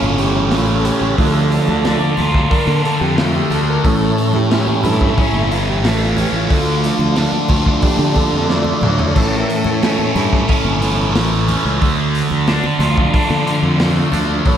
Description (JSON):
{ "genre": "psychedelic rock", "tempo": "90 BPM", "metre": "4/4", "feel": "straight", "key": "unclear", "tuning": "A4 = 440 Hz", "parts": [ { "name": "overdriven combo organ", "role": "sustained chords", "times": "0.0-14.6 s", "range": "C#3 to D5", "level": "-20 LUFS", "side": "right 2 dB", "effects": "none" }, { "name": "thick fuzz guitar", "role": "riff", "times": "0.0-14.6 s", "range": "A2 to F4", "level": "-17 LUFS", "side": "equal", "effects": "distortion, phaser" }, { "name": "fuzz fingered electric bass", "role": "bass", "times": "0.0-14.6 s", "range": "G1 to D3", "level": "-20 LUFS", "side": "equal", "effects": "overdrive" }, { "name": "congas", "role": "percussion", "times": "0.0-14.3 s", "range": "none", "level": "-28 LUFS", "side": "left 2 dB", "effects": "none" }, { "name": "crunchy breakbeat drum kit", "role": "drums", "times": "0.2-14.6 s", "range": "crash cymbal, hi-hat, kick drum, snare drum, toms", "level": "-20 LUFS", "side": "equal", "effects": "none" } ], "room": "moderate lush hall reverb, RT60 2.9 s", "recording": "dreamy mix soaked in reverb", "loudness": "-13 LUFS", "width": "side -9 dB against mid", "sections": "0.0-14.6 A section", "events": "transistor combo organ solo 0.0-14.6; drum fill 8.5-9.2", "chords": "0.0 A; 1.2 Dm; 3.8 A; 6.5 Dm; 9.2 A; 11.8 Dm" }